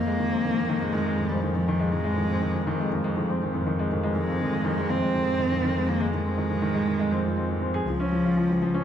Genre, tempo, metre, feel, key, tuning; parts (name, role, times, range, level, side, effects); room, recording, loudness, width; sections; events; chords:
piano and strings electronica; 121 BPM; 4/4; straight; F minor; A4 = 439 Hz
dark cello; melody; 0.0-8.8 s; F3 to C4; -27 LUFS; right 1 dB; ping-pong delay
dark upright piano; riff; 0.0-8.8 s; Eb3 to Ab4; -27 LUFS; left 1 dB; ping-pong delay
clear symphonic double bass section; bass; 0.0-8.8 s; Db2 to F2; -29 LUFS; equal
wet recital hall reverb, RT60 1.4 s, small room ambience; nothing above 11.0 kHz; -23 LUFS; side -9 dB against mid
0.0-8.8 A section
0.0 Fm7; 7.9 Db